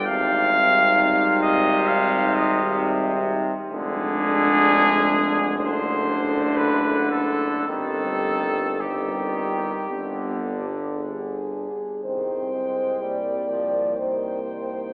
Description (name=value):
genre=classical, hymn-like piece for brass band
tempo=52-68 BPM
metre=4/4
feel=rubato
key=C minor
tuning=A4 = 440 Hz
part: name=warm cornet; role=melody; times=0.0-14.9 s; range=G4 to G5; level=-22 LUFS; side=equal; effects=none
part: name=mellow French horn section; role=second line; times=0.0-14.9 s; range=B3 to D5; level=-27 LUFS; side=equal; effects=none
part: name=brilliant trombone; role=accompaniment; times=0.0-14.9 s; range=C3 to Ab3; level=-26 LUFS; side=equal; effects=none
part: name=dark euphonium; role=accompaniment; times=0.0-14.9 s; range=G3 to C4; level=-31 LUFS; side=equal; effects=none
part: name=warm tuba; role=bass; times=0.0-14.9 s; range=F1 to C2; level=-29 LUFS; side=equal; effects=none
room=wet cathedral reverb, RT60 4.5 s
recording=AM radio sound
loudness=-19 LUFS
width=side -39 dB against mid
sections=0.0-12.0 A section; 12.0-14.9 B section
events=none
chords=0.1 Abmaj7; 3.7 Ddim/F; 5.6 D7/F#; 7.7 Cm/G; 9.9 G; 12.0 Cm